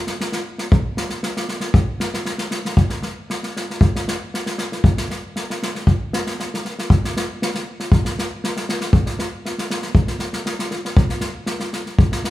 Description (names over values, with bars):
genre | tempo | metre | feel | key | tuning
balkan folk | 117 BPM | 2/4 | straight | none | none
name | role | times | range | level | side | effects
unplugged drum kit | percussion | 0.1-12.3 s | kick drum, snare drum | -18 LUFS | left 1 dB | none
room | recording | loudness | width
moderate recital hall reverb, RT60 1.5 s | small room ambience | -19 LUFS | side -15 dB against mid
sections
0.0-2.8 A section; 2.8-12.3 B section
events
none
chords
none